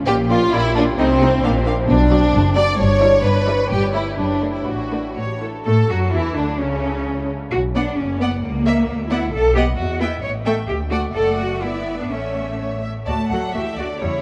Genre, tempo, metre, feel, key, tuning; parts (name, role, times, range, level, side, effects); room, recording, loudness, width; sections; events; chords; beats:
quick classical-period movement for string orchestra; 130 BPM; 2/4; rubato; D major; A4 = 442 Hz
rich symphonic violin section; melody; 0.1-14.2 s; C#4 to A5; -32 LUFS; equal
warm symphonic violin section; second line; 0.1-14.2 s; C4 to E5; -23 LUFS; equal
warm studio viola section; accompaniment; 0.1-14.1 s; C#3 to F#4; -28 LUFS; equal
rich symphonic double bass section; bass; 0.1-14.1 s; F#1 to A2; -25 LUFS; equal
warm studio cello section; bass; 0.1-14.2 s; F#2 to C#5; -25 LUFS; equal
wet cathedral reverb, RT60 6.6 s; in a vast, echoing space; -19 LUFS; mono
0.0-5.7 A section; 5.7-13.1 B section; 13.1-14.2 B section
0.1 Bb; 1.0 Adim/C; 1.4 Bb; 1.9 Bm; 2.8 Em7/G; 3.7 A7/G; 4.2 D/F#; 4.7 D/A; 5.2 A; 5.7 D; 6.6 N.C.; 7.5 Bm; 8.4 A#dim/C#; 8.9 Bm/D; 9.3 B7; 9.8 Em; 10.2 A7(no3); 10.7 D; 11.1 D/F#; 11.6 Em7/G; 12.1 A; 13.1 D
| 0.06 0.52 | 0.97 1.43 | 1.88 2.33 | 2.78 3.24 | 3.70 4.17 | 4.66 5.17 | 5.66 6.13 | 6.60 7.06 | 7.53 7.98 | 8.44 8.88 | 9.33 9.79 | 10.24 10.69 | 11.15 11.62 | 12.10 12.59 | 13.08 13.55 | 14.02